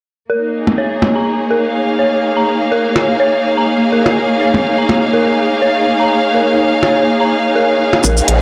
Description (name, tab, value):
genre	minimal techno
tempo	124 BPM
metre	4/4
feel	swing 56% on 16ths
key	Bb minor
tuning	A4 = 439 Hz
part	dark detuned synth bell	riff	0.3-8.1 s	Bb4 to Bb5	-20 LUFS	equal	chorus, vintage 12-bit sampler grit, sidechain pumping, low-pass filter, analog delay
part	dark studio string section	texture	0.3-8.4 s	Bb3 to F5	-16 LUFS	equal	sidechain pumping
part	percussion blips	percussion	0.7-8.0 s	none	-20 LUFS	equal	none
part	round analog bass	bass	8.0-8.4 s	Bb1	-16 LUFS	equal	tube saturation, sidechain pumping
part	electronic kick drum	drums	8.0-8.1 s	none	-20 LUFS	equal	overdrive, high-pass filter on kick
part	electronic shaker and hi-hat	drums	8.0-8.4 s	none	-18 LUFS	equal	overdrive
part	riser	sound effects	8.2-8.4 s	none	-22 LUFS	equal	none
room	moderate small room ambience, RT60 0.5 s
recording	dry, gritty hardware recording, cassette tape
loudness	-14 LUFS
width	mono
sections	0.3-8.0 A section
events	riser 8.2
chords	0.3 Bbm7